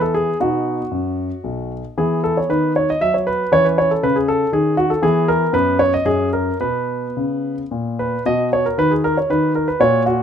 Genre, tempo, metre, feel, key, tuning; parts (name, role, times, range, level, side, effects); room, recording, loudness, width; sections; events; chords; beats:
classical, baroque-style suite movement for grand piano; 108-123 BPM; 3/4; rubato; B major from 5.0 s; A4 = 440 Hz
warm concert grand piano; solo; 0.0-10.2 s; B1 to E5; -16 LUFS; equal
light reverb; dark, warm production; -16 LUFS; side -8 dB against mid
0.0-8.3 A section; 8.3-10.2 B section
0.4 B; 2.0 E5; 3.5 C#m9; 5.0 E; 5.5 B5/F#; 6.1 F#; 6.6 Bsus2; 8.3 B
| 0.40 0.92 1.44 | 1.97 2.49 3.01 | 3.53 4.03 4.53 | 5.02 5.53 6.06 | 6.60 7.16 7.71 | 8.26 8.78 9.29 | 9.79